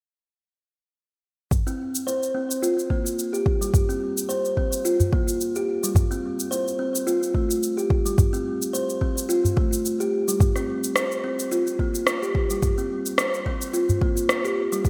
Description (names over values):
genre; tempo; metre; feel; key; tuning
organic downtempo; 108 BPM; 4/4; swing 55% on 16ths; unclear; A4 = 442 Hz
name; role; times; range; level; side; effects
electronic kick drum; drums; 1.5-14.9 s; none; -25 LUFS; equal; overdrive
electronic shaker and rim click; drums; 1.5-14.9 s; none; -29 LUFS; equal; gated reverb
udu; percussion; 1.5-14.9 s; none; -27 LUFS; equal; none
kalimba; arpeggios; 1.7-14.8 s; G3 to C5; -27 LUFS; equal; low-pass filter, delay
room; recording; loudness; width
wet lush hall reverb, RT60 2.6 s; bright 1980s-style digital production; -24 LUFS; mono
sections
1.5-14.9 A section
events
none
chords
none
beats
| 1.51 2.07 2.62 3.18 | 3.74 4.29 4.85 5.40 | 5.96 6.51 7.07 7.62 | 8.18 8.74 9.29 9.85 | 10.40 10.96 11.51 12.07 | 12.62 13.18 13.74 14.29 | 14.85